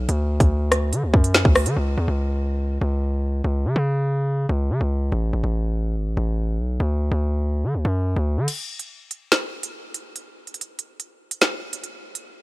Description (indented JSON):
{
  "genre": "hip hop, drill",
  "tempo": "143 BPM",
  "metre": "4/4",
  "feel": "half-time",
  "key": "unclear",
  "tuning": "A4 = 439 Hz",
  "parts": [
    { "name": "distorted 808-style bass", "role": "bass", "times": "0.0-8.5 s", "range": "G#1 to D3", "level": "-21 LUFS", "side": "equal", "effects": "distortion" },
    { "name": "drill drum kit", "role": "drums", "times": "0.1-1.8, 8.5-12.2 s", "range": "crash cymbal, hi-hat, kick drum, rim click, snare drum", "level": "-20 LUFS", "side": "equal", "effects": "none" }
  ],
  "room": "digital ambience",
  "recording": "none",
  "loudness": "-20 LUFS",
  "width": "side -20 dB against mid",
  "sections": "0.0-1.8 A section; 1.8-8.5 B section; 8.5-12.4 C section",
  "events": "break 8.5-12.4",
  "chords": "none",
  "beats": "| 0.09 0.51 0.93 1.35 | 1.77 2.19 2.60 3.02 | 3.44 3.86 4.28 4.70 | 5.12 5.54 5.96 6.38 | 6.80 7.22 7.64 8.06 | 8.48 8.90 9.32 9.74 | 10.16 10.58 11.00 11.42 | 11.84"
}